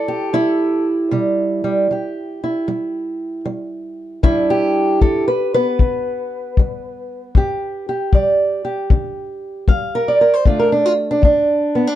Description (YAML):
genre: acoustic country blues, solo or duo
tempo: 77 BPM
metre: 4/4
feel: swing 66% on 8ths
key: G mixolydian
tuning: A4 = 440 Hz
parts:
  - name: fingerpicked old ladder-braced acoustic guitar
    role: melody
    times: 0.0-12.0 s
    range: G2 to F5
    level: -17 LUFS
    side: right 1 dB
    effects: none
  - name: kick drum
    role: drums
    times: 4.2-11.5 s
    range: none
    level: -14 LUFS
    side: left 3 dB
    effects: none
room: moderate studio reverb, RT60 0.5 s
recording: dark, warm production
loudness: -15 LUFS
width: side -12 dB against mid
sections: 0.0-12.0 A section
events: none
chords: 0.0 C (rootless); 4.2 G; 10.5 D5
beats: 0.34 | 1.12 1.90 2.67 3.45 | 4.23 5.01 5.79 6.57 | 7.35 8.12 8.90 9.68 | 10.46 11.23